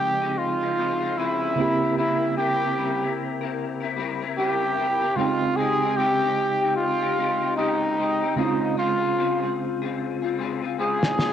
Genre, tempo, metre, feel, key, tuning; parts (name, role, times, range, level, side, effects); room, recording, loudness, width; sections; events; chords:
indie pop, bedroom pop; 75 BPM; 4/4; swing 60% on 16ths; Db lydian; A4 = 442 Hz
growling trumpet; melody; 0.0-11.3 s; Eb4 to Ab4; -24 LUFS; right 1 dB; analog chorus, cassette tape, analog delay
bright reed electric piano; accompaniment; 0.0-11.3 s; Db3 to G5; -29 LUFS; right 6 dB; fast tremolo, cassette tape
electric guitar through a small old amp; accompaniment; 0.0-11.3 s; Db3 to Bb4; -28 LUFS; left 9 dB; ensemble chorus, vibrato effect, cassette tape
snare drum; drums; 11.0-11.3 s; -23 LUFS; left 1 dB; vintage 12-bit sampler grit, cassette tape
moderate spring reverb, RT60 2.6 s; home recording on cassette; -21 LUFS; side -9 dB against mid
0.0-11.3 A section
drum fill 10.0-11.3
0.0 Dbmaj9; 1.6 C7/Db; 5.2 Fm9/Db; 8.4 Dbmaj7